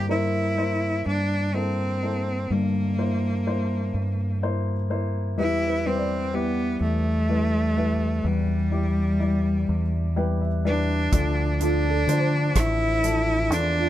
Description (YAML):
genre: acoustic folk-pop ballad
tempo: 42 BPM (dotted quarters)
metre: 6/8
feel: straight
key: unclear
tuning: A4 = 439 Hz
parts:
  - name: clear cello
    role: melody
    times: 0.0-13.9 s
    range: G3 to E4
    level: -26 LUFS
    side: equal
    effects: none
  - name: warm upright piano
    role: accompaniment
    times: 0.0-13.9 s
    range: G1 to G5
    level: -29 LUFS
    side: left 4 dB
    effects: none
  - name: deep dub fingered electric bass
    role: bass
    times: 0.0-13.9 s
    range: A1 to D3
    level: -25 LUFS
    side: equal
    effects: none
  - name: felt-muted upright piano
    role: arpeggios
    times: 0.1-13.9 s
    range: D4 to D5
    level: -32 LUFS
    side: right 6 dB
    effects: none
  - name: natural country drum kit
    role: drums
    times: 11.1-13.7 s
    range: hi-hat, kick drum, rim click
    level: -25 LUFS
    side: equal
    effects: none
room: little or no reverb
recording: close, detailed microphones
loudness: -22 LUFS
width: side -13 dB against mid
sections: 0.0-11.1 A section; 11.1-13.9 B section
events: none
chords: 0.0 C7/G; 5.4 Em; 11.1 Dm